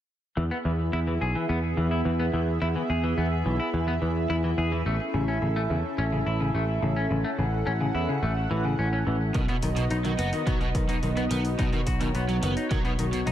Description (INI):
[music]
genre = synthwave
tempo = 107 BPM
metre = 4/4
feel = straight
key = E major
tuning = A4 = 440 Hz
[part]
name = chorused pulse-width pad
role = sustained chords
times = 0.4-13.3 s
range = B3 to F#5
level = -31 LUFS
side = equal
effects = sidechain pumping
[part]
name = semi-hollow electric guitar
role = arpeggios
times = 0.4-13.3 s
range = C#3 to G#4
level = -30 LUFS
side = left 2 dB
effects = low-pass filter, digital delay
[part]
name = picked electric bass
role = bass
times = 0.4-13.3 s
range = F#1 to E2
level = -27 LUFS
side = equal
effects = low-pass filter
[part]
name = overdriven semi-hollow guitar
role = riff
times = 9.3-13.2 s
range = B2 to B3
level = -32 LUFS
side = right 3 dB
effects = ensemble chorus, digital delay
[part]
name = electronic hi-hat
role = drums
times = 9.3-13.3 s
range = none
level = -42 LUFS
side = left 1 dB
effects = overdrive
[part]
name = electronic kick drum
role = drums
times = 9.3-12.8 s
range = none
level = -28 LUFS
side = equal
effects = overdrive
[sound]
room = light reverb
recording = none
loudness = -24 LUFS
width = side -11 dB against mid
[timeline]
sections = 0.4-13.3 A section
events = filter sweep on picked electric bass 0.4-13.3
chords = 0.4 E; 4.9 A; 9.3 B